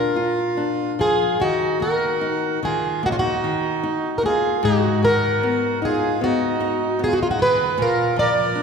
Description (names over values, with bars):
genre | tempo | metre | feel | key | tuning
fado-style ballad | 75 BPM | 4/4 | rubato | Eb minor | A4 = 444 Hz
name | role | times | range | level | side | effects
fingerpicked plugged-in twelve-string acoustic guitar | melody | 0.0-8.6 s | F4 to D5 | -20 LUFS | equal | none
accordion | second line | 0.0-8.6 s | Db4 to Bb4 | -25 LUFS | right 4 dB | none
nylon-string guitar | accompaniment | 0.0-8.6 s | Ab2 to F4 | -24 LUFS | left 3 dB | none
room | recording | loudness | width
wet scoring stage reverb, RT60 1.9 s | recorded in a church or concert hall | -18 LUFS | side -6 dB against mid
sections
0.0-8.6 A section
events
none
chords
0.0 Bb7; 1.4 Ebm; 4.6 Abm7; 7.8 Bb